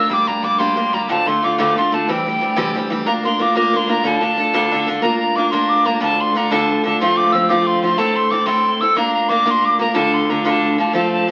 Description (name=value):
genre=celtic folk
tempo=122 BPM (dotted quarters)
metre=6/8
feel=straight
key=D minor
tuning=A4 = 440 Hz
part: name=breathy tin whistle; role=melody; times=0.0-11.3 s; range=G5 to E6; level=-20 LUFS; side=equal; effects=none
part: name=picked steel-string acoustic guitar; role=accompaniment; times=0.0-11.3 s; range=D2 to Bb4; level=-20 LUFS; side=equal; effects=none
part: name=warm cello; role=drone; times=0.0-11.3 s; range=D2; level=-29 LUFS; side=equal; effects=none
room=wet studio reverb, RT60 0.6 s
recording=very old 78 rpm record, vinyl crackle, nothing above 10.9 kHz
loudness=-17 LUFS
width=mono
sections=0.0-5.0 A section; 5.0-11.3 B section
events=none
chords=0.1 Gm; 1.1 Dm; 2.1 C; 3.1 Bb; 4.0 Dm; 5.0 Bb; 6.0 Dm; 7.0 F; 8.0 Am; 9.0 Bb; 10.0 Dm